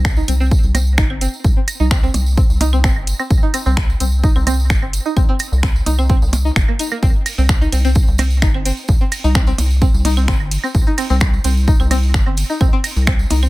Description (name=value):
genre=minimal techno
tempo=129 BPM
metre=4/4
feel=straight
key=C minor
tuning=A4 = 439 Hz
part: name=rubbery square bass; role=bass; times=0.0-13.5 s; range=G1 to C2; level=-16 LUFS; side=equal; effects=sidechain pumping
part: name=booming analog drum machine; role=drums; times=0.0-13.4 s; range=finger snaps, hi-hat, ride cymbal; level=-23 LUFS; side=equal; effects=none
part: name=electronic kick drum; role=drums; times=0.0-13.2 s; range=none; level=-15 LUFS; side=equal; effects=none
part: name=tambourine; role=percussion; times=0.0-13.5 s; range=none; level=-30 LUFS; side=right 3 dB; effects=none
part: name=string-like resonator pluck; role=riff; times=0.2-13.5 s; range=Bb3 to Eb4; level=-23 LUFS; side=equal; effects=chorus, sidechain pumping, dub echo
part: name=claves and percussion blips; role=percussion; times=0.3-13.5 s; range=none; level=-25 LUFS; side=right 5 dB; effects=dub echo
room=little or no reverb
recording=none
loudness=-13 LUFS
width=side -19 dB against mid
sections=0.0-13.5 A section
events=none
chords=0.0 C5